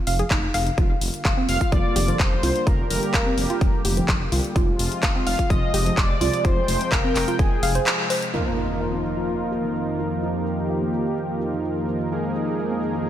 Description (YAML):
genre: progressive house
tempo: 127 BPM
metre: 4/4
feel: straight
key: unclear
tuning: A4 = 440 Hz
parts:
  - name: soft round pluck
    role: arpeggios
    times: 0.1-13.0 s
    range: F3 to F5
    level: -29 LUFS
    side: right 1 dB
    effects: chorus, sidechain pumping, tape echo
  - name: dark detuned saw bass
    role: bass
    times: 0.1-7.8 s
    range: F1 to C2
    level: -26 LUFS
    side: equal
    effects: sidechain pumping
  - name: pop drum kit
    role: drums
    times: 0.1-13.1 s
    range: cabasa, crash cymbal, handclaps, hi-hat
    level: -26 LUFS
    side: left 1 dB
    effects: low-pass filter on hats, studio reverb, low-pass filter on snare, low-pass filter on cymbals, low-pass filter on perc
  - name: electronic kick drum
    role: drums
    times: 0.3-7.5 s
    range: none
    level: -22 LUFS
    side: equal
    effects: studio reverb
  - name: warm analog pad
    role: sustained chords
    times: 0.8-13.1 s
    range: F2 to G5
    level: -28 LUFS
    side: left 1 dB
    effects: chorus, sidechain pumping
  - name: wide unison lead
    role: melody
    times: 1.5-8.1 s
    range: Ab4 to F5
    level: -27 LUFS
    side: equal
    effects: analog chorus, sidechain pumping, tape echo
  - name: soft supersaw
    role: stabs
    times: 8.3-13.1 s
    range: F3 to Bb4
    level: -26 LUFS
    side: right 2 dB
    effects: sidechain pumping, low-pass filter, tape echo
  - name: impact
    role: sound effects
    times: 8.3-10.2 s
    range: none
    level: -31 LUFS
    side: equal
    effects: none
room: light reverb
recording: none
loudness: -20 LUFS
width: side -11 dB against mid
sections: 0.0-8.3 A section; 8.3-13.1 B section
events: band accent 7.9; impact 8.3-10.2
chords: 0.0 N.C.; 0.8 Gm7/F; 4.6 Fm; 8.3 Bbsus4/F; 12.1 Absus2/F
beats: 0.31 | 0.78 1.25 1.72 2.20 | 2.67 3.14 3.61 4.09 | 4.56 5.03 5.50 5.98 | 6.45 6.92 7.39 7.87 | 8.34 8.81 9.28 9.76 | 10.23 10.70 11.17 11.64 | 12.12 12.59 13.06